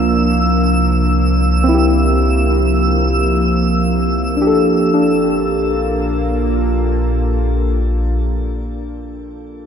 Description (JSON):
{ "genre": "ambient", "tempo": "55 BPM", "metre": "3/4", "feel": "straight", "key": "Bb lydian", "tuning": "A4 = 440 Hz", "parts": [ { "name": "muted felt-like synth keys", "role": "arpeggios", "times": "0.0-9.7 s", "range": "C4 to A4", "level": "-18 LUFS", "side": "left 1 dB", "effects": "chorus, tape echo, shimmer reverb" }, { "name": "deep rumbling drone", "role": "bass", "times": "0.0-8.2 s", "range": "Bb1 to C2", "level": "-18 LUFS", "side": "equal", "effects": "built-in reverb" }, { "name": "bowed-like drone", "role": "drone", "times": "0.0-8.2 s", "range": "F3 to F4", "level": "-19 LUFS", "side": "right 2 dB", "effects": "built-in reverb" }, { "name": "twinkling granular texture", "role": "texture", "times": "0.0-5.0 s", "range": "E6", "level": "-23 LUFS", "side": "right 1 dB", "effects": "built-in reverb, shimmer reverb" } ], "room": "wet cathedral reverb, RT60 6.8 s", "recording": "none", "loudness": "-13 LUFS", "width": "side -8 dB against mid", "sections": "0.0-4.9 A section; 4.9-8.2 B section", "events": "none", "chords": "0.0 C7; 4.9 Bbmaj7", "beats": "0.57 | 1.66 2.75 3.84 | 4.93 6.03 7.12" }